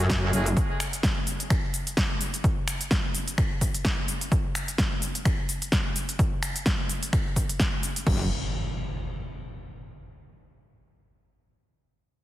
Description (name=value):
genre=bass house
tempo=128 BPM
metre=4/4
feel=swing 56% on 16ths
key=F# minor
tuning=A4 = 440 Hz
part: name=metallic wobble bass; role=bass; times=0.0-0.6, 8.1-8.3 s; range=F#1 to F#2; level=-24 LUFS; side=equal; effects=chorus, sidechain pumping
part: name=big-room dance drum kit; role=drums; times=0.0-8.2 s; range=crash cymbal, finger snaps, hi-hat, shaker, snare drum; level=-29 LUFS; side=equal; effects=overdrive
part: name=electronic kick drum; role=drums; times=0.1-8.2 s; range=none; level=-26 LUFS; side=equal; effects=overdrive
part: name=warm horn section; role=stabs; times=0.2-0.5 s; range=G#3 to G#4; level=-33 LUFS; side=right 1 dB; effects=sidechain pumping, tape echo
part: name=impact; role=sound effects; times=8.1-9.9 s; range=none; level=-32 LUFS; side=equal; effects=none
room=light reverb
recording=heavily compressed radio sound, multiband compression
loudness=-24 LUFS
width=side -15 dB against mid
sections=0.0-8.1 A section; 8.1-9.9 B section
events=none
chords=0.0 F#madd9; 8.1 N.C.